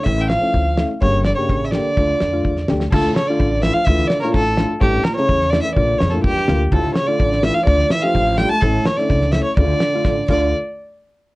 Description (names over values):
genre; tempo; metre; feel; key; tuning
klezmer; 126 BPM; 2/4; straight; D harmonic minor; A4 = 435 Hz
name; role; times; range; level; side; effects
warm violin; melody; 0.0-10.5 s; G4 to A5; -19 LUFS; equal; none
trombone with bucket mute; second line; 0.0-10.5 s; G2 to A3; -24 LUFS; right 3 dB; none
dark upright piano; accompaniment; 0.0-10.5 s; A3 to G4; -23 LUFS; left 2 dB; none
upright bass; bass; 0.1-10.5 s; G1 to F2; -20 LUFS; equal; none
damped 70s drum kit; drums; 0.1-10.4 s; crash cymbal, kick drum, snare drum; -20 LUFS; equal; none
room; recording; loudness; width
moderate small room reverb, RT60 0.5 s; worn, warbling old tape, cassette tape, warbly pitch drift; -15 LUFS; side -19 dB against mid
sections
0.0-2.9 A section; 2.9-10.5 B section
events
drum fill 10.1-10.5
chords
0.0 A; 1.0 Gm; 2.0 Dm; 4.8 A; 5.8 Bb; 6.7 Dm; 8.6 A; 9.6 Dm; 10.5 N.C.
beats
| 0.07 0.54 | 1.02 1.50 | 1.97 2.45 | 2.92 3.40 | 3.88 4.35 | 4.83 5.30 | 5.78 6.25 | 6.73 7.20 | 7.68 8.15 | 8.63 9.11 | 9.58 10.06